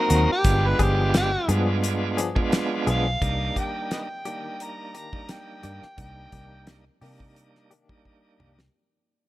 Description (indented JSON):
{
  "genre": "straight-eighth soul blues",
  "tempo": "87 BPM",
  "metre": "4/4",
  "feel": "swing 53% on 16ths",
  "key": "C minor",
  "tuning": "A4 = 440 Hz",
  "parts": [
    { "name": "overdriven harmonica", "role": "melody", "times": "0.0-6.7 s", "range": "G4 to Bb5", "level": "-28 LUFS", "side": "equal", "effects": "none" },
    { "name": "bright tonewheel organ", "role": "accompaniment", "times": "0.0-8.6 s", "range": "G3 to Gb4", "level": "-28 LUFS", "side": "right 2 dB", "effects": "slow rotary speaker, overdrive" },
    { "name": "direct-recorded clean electric guitar", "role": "stabs", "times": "0.1-8.6 s", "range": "Eb3 to Ab4", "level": "-32 LUFS", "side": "left 4 dB", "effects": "tremolo" },
    { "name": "vintage muted fingered electric bass", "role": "bass", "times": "0.1-8.7 s", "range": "G1 to C3", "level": "-24 LUFS", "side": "equal", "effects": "none" },
    { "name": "damped 70s drum kit", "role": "drums", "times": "0.1-8.7 s", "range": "hi-hat, kick drum, snare drum, toms", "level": "-26 LUFS", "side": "equal", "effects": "none" }
  ],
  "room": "light reverb, small room reverb",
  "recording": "none",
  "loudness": "-21 LUFS",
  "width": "side -16 dB against mid",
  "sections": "0.0-8.7 A section",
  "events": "fade-out 0.0-8.7; harmonica solo 0.0-8.7; drum fill 8.1-8.7",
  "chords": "0.5 G7b9; 3.2 Cm9",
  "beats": "| 0.45 1.14 1.83 2.53 | 3.22 3.91 4.60 5.29 | 5.98 6.67 7.36 8.05"
}